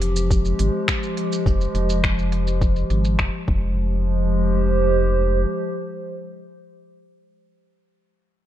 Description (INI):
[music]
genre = folktronica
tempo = 104 BPM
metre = 4/4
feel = straight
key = F minor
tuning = A4 = 440 Hz
[part]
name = warbly tape-like pad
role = sustained chords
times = 0.0-6.8 s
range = F3 to C5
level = -23 LUFS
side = equal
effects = chorus, built-in reverb, tremolo, vintage 12-bit sampler grit
[part]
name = round analog bass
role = bass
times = 0.0-5.5 s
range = F1 to Ab1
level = -21 LUFS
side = equal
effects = none
[part]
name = organic electronic drum kit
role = drums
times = 0.0-3.3 s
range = finger snaps, hi-hat, shaker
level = -27 LUFS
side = equal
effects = overdrive, low-pass filter on perc, small room ambience, low-pass filter on hats, low-pass filter on snare
[part]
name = electronic kick drum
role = drums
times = 0.3-3.6 s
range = none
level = -22 LUFS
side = equal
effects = overdrive, small room ambience
[sound]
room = little or no reverb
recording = none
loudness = -18 LUFS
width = side -12 dB against mid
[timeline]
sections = 0.0-3.8 A section; 3.8-6.1 B section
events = none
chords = 0.0 Fmadd9; 3.5 Fm; 3.8 Fmadd9